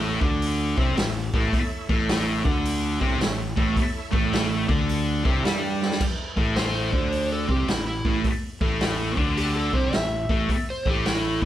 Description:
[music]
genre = blues rock power trio and southern rock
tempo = 107 BPM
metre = 4/4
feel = swing 65% on 8ths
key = unclear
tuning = A4 = 440 Hz
[part]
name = overdriven tonewheel organ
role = sustained chords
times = 0.0-6.0 s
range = E4 to A5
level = -36 LUFS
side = right 3 dB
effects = slow rotary speaker, chorus vibrato
[part]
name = thick fuzz guitar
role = riff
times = 0.0-11.5 s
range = A2 to G4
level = -26 LUFS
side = equal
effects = distortion
[part]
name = fuzz fingered electric bass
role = bass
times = 0.0-11.5 s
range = A1 to G2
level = -28 LUFS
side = equal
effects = overdrive
[part]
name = vintage drum kit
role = drums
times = 0.2-11.5 s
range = crash cymbal, hi-hat, kick drum, snare drum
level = -26 LUFS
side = equal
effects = none
[part]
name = overdriven slide guitar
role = melody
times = 6.6-11.4 s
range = E4 to E5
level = -28 LUFS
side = equal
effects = none
[sound]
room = moderate large studio reverb, RT60 1.0 s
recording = band playing live in one room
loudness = -21 LUFS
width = side -12 dB against mid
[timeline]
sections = 0.0-6.0 A section; 6.0-11.5 B section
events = tonewheel organ fill 0.7-1.5; drum fill 5.7; electric slide guitar solo 6.0-11.5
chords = 0.0 A; 6.0 A5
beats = 0.40 0.96 | 1.52 2.08 2.64 3.20 | 3.76 4.32 4.88 5.44 | 6.00 6.56 7.12 7.68 | 8.24 8.80 9.37 9.93 | 10.49 11.05

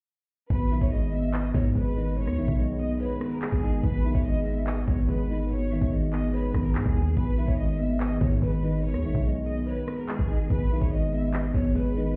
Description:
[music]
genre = hip hop, drill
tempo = 144 BPM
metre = 4/4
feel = half-time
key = G# minor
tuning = A4 = 439 Hz
[part]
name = clear studio violin section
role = melody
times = 0.5-12.1 s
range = G#4 to E5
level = -40 LUFS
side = equal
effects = low-pass filter, tape echo
[part]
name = felt-muted upright piano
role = accompaniment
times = 0.5-12.2 s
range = B2 to B4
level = -32 LUFS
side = equal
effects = low-pass filter
[part]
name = deep dark ambient pad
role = sustained chords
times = 2.2-12.2 s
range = D#3 to G#4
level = -40 LUFS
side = equal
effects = none
[part]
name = hard-hitting 808-style bass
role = bass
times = 0.5-12.2 s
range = G#1 to G#2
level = -30 LUFS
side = equal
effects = none
[part]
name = drill drum kit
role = drums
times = 0.5-12.2 s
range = handclaps, hi-hat, kick drum, rim click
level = -30 LUFS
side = equal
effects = none
[part]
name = breathy mellow pan flute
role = second line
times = 0.7-12.2 s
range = B4 to E5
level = -42 LUFS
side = equal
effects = tape echo
[sound]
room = little or no reverb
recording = heard muffled through a wall, stone room reverb, EQ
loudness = -26 LUFS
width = mono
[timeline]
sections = 0.5-12.2 A section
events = none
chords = 0.5 G#m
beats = | 0.50 0.92 1.34 1.75 | 2.17 2.59 3.00 3.42 | 3.84 4.25 4.67 5.09 | 5.50 5.92 6.34 6.75 | 7.17 7.59 8.00 8.42 | 8.84 9.25 9.67 10.09 | 10.50 10.92 11.34 11.75

